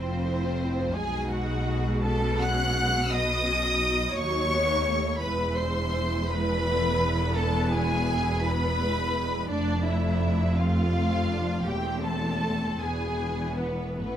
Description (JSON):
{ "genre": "classical, slow romantic movement for string orchestra", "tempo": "55 BPM (dotted quarters)", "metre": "12/8", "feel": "uneven beats, rubato", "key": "unclear", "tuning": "A4 = 440 Hz", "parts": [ { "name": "warm studio violin section", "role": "melody", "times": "0.0-14.2 s", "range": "B4 to F#6", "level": "-31 LUFS", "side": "equal", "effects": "none" }, { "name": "warm studio violin section", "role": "second line", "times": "0.0-14.2 s", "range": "B3 to F#5", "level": "-30 LUFS", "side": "left 1 dB", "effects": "none" }, { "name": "rich studio viola section", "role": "accompaniment", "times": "0.0-14.2 s", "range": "E3 to F4", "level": "-32 LUFS", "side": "equal", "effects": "none" }, { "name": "rich studio cello section", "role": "bass", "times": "0.0-14.2 s", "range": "D#2 to B2", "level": "-31 LUFS", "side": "right 1 dB", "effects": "none" }, { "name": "warm studio double bass section", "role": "bass", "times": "0.0-14.2 s", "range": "E1 to D#2", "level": "-30 LUFS", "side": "equal", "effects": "none" } ], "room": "moderate stone room reverb, RT60 1.0 s", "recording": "none", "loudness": "-24 LUFS", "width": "side -10 dB against mid", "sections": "0.0-14.2 A section", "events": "none", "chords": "0.0 Fmaj7; 1.0 B; 5.2 E; 9.5 F; 11.7 Am/E; 12.8 E" }